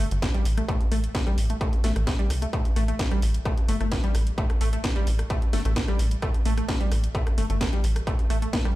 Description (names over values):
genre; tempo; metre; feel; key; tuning
driving peak-time techno; 130 BPM; 4/4; straight; unclear; A4 = 443 Hz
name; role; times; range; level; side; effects
tight sequenced synth; riff; 0.0-8.8 s; G3 to Bb3; -31 LUFS; equal; chorus, vintage 12-bit sampler grit, sidechain pumping, tape echo
tight sequencer bass; bass; 0.0-8.5 s; G1 to C2; -24 LUFS; equal; sidechain pumping
techno drum kit; drums; 0.1-8.7 s; hi-hat, rim click, snare drum; -33 LUFS; equal; overdrive, sidechain pumping on hats
electronic kick drum; drums; 0.2-8.6 s; none; -25 LUFS; equal; distortion, overdrive
room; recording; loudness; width
little or no reverb; played on a big sound system in a bare room, large studio reverb; -22 LUFS; side -16 dB against mid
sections
0.0-8.8 A section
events
none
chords
0.0 Gsus2